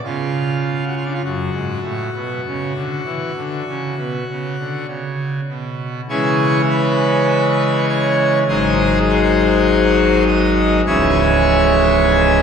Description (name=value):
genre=classical, chorale-style piece for pipe organ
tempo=50 BPM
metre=4/4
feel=rubato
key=F# minor, C# minor from 6.1 s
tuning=A4 = 440 Hz
part: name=pipe organ, full organ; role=solo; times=0.0-12.4 s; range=C#1 to E5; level=-15 LUFS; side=equal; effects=none
room=wet church reverb, RT60 3.7 s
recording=minimal, uncompressed stereo recording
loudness=-15 LUFS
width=side -7 dB against mid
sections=0.0-6.1 A section; 6.1-12.4 B section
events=none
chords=0.0 N.C.; 1.2 F#m; 6.1 C#m; 8.5 G#7; 10.9 C#m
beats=0.03 | 1.24 2.46 3.68 4.90 | 6.11 7.30 8.48 9.67 | 10.85 12.03